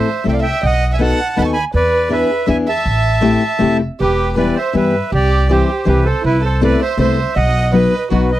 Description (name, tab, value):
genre	musette waltz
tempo	160 BPM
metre	3/4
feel	straight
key	A minor, E minor from 4.0 s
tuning	A4 = 440 Hz
part	accordion	melody	0.0-8.4 s	E4 to C#6	-19 LUFS	right 1 dB	none
part	dark violin	second line	0.0-8.4 s	E4 to A5	-21 LUFS	right 5 dB	none
part	fingerpicked steel-string acoustic guitar	accompaniment	0.0-8.3 s	E3 to B4	-16 LUFS	left 4 dB	none
part	upright bass	bass	0.3-8.4 s	E1 to G2	-17 LUFS	equal	none
room	little or no reverb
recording	dry, close 1970s-style studio recording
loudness	-13 LUFS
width	side -14 dB against mid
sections	0.0-4.0 A section; 4.0-8.4 B section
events	none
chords	0.0 Am; 0.6 B7; 1.7 E7; 2.9 Am7; 4.0 Em; 5.1 C; 6.2 Amadd9/C; 7.4 B